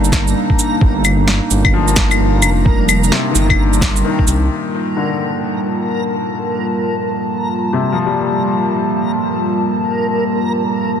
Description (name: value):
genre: future garage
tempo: 130 BPM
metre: 4/4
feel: swing 63% on 16ths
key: G minor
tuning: A4 = 441 Hz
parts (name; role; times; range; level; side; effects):
- bright upright piano; accompaniment; 0.0-11.0 s; C3 to A4; -22 LUFS; left 6 dB; vintage 12-bit sampler grit, sidechain pumping, dub echo
- dark analog pad; sustained chords; 0.0-11.0 s; G3 to A5; -18 LUFS; right 1 dB; chorus, vintage 12-bit sampler grit, sidechain pumping
- dark detuned saw bass; bass; 0.0-4.5 s; F1 to C2; -16 LUFS; equal; tube saturation, sidechain pumping
- electronic shaker, snare drum, cabasa and claves; drums; 0.0-4.4 s; none; -17 LUFS; left 1 dB; low-pass filter on perc, low-pass filter on snare, low-pass filter on room
- backwards swelling texture; texture; 0.0-11.0 s; Bb4; -24 LUFS; equal; built-in reverb
- electronic kick drum; drums; 0.1-4.3 s; none; -16 LUFS; equal; none
room: light reverb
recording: dense, heavily limited modern master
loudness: -13 LUFS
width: side -8 dB against mid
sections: 0.0-4.5 A section; 4.5-11.0 B section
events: none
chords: 0.0 Eb; 4.5 Gm9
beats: 0.35 | 0.81 1.27 1.74 2.20 | 2.66 3.12 3.58 4.04 | 4.50 4.97 5.43 5.89 | 6.35 6.81 7.28 7.74 | 8.20 8.66 9.12 9.58 | 10.04 10.51 10.97